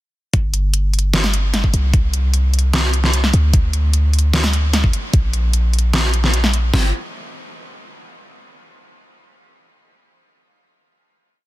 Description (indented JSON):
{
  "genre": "future bass",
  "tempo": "150 BPM",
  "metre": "4/4",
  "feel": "half-time",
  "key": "G minor",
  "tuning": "A4 = 440 Hz",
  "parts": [
    { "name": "warm 808-style bass", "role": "bass", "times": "0.3-6.9 s", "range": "G1 to D2", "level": "-16 LUFS", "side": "equal", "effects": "sidechain pumping" },
    { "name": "pop drum kit", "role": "drums", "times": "0.3-6.8 s", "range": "kick drum, snare drum", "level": "-16 LUFS", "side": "equal", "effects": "overdrive" },
    { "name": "pop drum kit", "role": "drums", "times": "0.3-6.6 s", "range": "hi-hat, snare drum", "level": "-20 LUFS", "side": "equal", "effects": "overdrive" }
  ],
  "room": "little or no reverb",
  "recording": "dense, heavily limited modern master",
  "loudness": "-14 LUFS",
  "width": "side -17 dB against mid",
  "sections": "0.3-6.7 drop; 6.7-8.3 final note",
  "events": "drop 0.3-6.7",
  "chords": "none",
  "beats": "| 0.34 0.74 1.14 1.54 | 1.94 2.34 2.74 3.14 | 3.54 3.94 4.34 4.74 | 5.14 5.54 5.94 6.34 | 6.74"
}